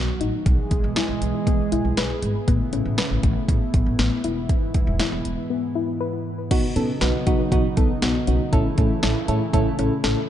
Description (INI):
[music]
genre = synth-pop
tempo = 119 BPM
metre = 4/4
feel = straight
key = E major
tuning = A4 = 440 Hz
[part]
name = chorused pulse-width pad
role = sustained chords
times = 0.0-10.3 s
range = G#2 to G#4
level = -27 LUFS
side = right 1 dB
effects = none
[part]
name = soft round pluck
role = arpeggios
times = 0.0-10.2 s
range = A3 to B4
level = -29 LUFS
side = left 7 dB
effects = chorus, tape echo
[part]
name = upright bass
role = bass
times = 0.0-10.1 s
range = E1 to B2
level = -25 LUFS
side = equal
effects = none
[part]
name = deep house drum kit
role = drums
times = 0.2-10.2 s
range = crash cymbal, hi-hat, kick drum, snare drum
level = -22 LUFS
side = equal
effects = none
[part]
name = mellow FM electric piano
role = accompaniment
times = 6.5-10.2 s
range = B3 to A4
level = -24 LUFS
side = right 2 dB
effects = chorus
[sound]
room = light reverb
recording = dark, warm production, nothing above 10.7 kHz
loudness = -19 LUFS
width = side -11 dB against mid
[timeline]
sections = 0.0-6.5 A section; 6.5-10.3 B section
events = break 5.5-6.5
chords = 0.5 E/B; 2.5 Aadd9; 4.2 E; 6.5 Badd9; 8.5 A